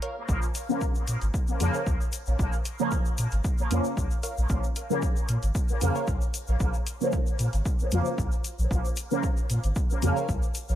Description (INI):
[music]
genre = dub techno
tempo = 114 BPM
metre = 4/4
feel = straight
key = Bb minor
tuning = A4 = 440 Hz
[part]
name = wavetable chord stab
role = riff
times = 0.0-6.1, 10.2-10.3 s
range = Bb4 to F5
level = -38 LUFS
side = right 2 dB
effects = cassette tape, sidechain pumping, dub echo
[part]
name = electronic hi-hat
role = drums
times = 0.0-10.7 s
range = none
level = -38 LUFS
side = left 1 dB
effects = none
[part]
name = soft dub sub bass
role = bass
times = 0.3-10.8 s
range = Ab1 to Bb2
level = -26 LUFS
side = equal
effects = sidechain pumping
[part]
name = electronic kick drum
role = drums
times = 0.3-10.4 s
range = none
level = -27 LUFS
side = equal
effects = none
[part]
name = egg shaker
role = percussion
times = 0.3-10.8 s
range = none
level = -40 LUFS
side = left 4 dB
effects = none
[part]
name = resonant sweep polysynth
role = stabs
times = 0.7-10.2 s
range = Db3 to Bb3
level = -30 LUFS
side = equal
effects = chorus, phaser, sidechain pumping, dub echo
[sound]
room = light reverb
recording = none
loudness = -24 LUFS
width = side -12 dB against mid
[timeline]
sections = 0.0-10.8 A section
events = none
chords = 0.0 Bbm